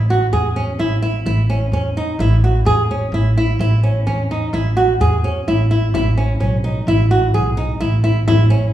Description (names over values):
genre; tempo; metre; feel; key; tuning
contemporary instrumental, chamber music in an uneven meter; 129 BPM; 5/4; straight; A lydian; A4 = 440 Hz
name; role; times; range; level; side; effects
flamenco guitar; arpeggios; 0.0-8.7 s; C#4 to G#4; -18 LUFS; right 1 dB; none
upright bass; bass; 0.0-8.7 s; A1 to E2; -16 LUFS; equal; none
frame drum; percussion; 5.9-8.6 s; none; -23 LUFS; left 1 dB; none
room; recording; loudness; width
wet recital hall reverb, RT60 1.4 s; heard from further back in the room, small room ambience; -14 LUFS; side -12 dB against mid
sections
0.0-8.7 A section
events
none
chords
0.0 A; 5.9 E5/A